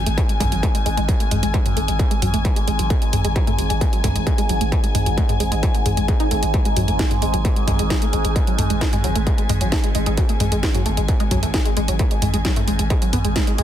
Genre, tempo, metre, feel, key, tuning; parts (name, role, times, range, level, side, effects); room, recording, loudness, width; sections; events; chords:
driving peak-time techno; 132 BPM; 4/4; straight; A4 = 442 Hz
tight sequenced synth; riff; 0.0-13.6 s; F#3 to D#4; -26 LUFS; equal; chorus, tube saturation, sidechain pumping, ping-pong delay
growling 808-style bass; bass; 0.0-13.6 s; G#1; -23 LUFS; equal; overdrive, sidechain pumping, low-pass filter
overtone-sweeping drone; drone; 0.0-13.6 s; G#2; -28 LUFS; right 3 dB; chorus, built-in reverb, sidechain pumping
dark studio string section; texture; 0.0-13.6 s; G#5; -28 LUFS; left 5 dB; sidechain pumping
techno drum kit; drums; 0.1-13.6 s; hi-hat, snare drum, toms; -25 LUFS; right 1 dB; overdrive, sidechain pumping on hats, small room reverb, sidechain pumping on cymbals, sidechain pumping on toms
electronic kick drum; drums; 0.2-13.5 s; -20 LUFS; equal; distortion, overdrive, small room reverb
digital ambience; dense, heavily limited modern master; -17 LUFS; side -11 dB against mid
0.0-13.6 A section
filter sweep on synth arpeggio sound 0.0-13.6; band accent 13.4
0.0 G#5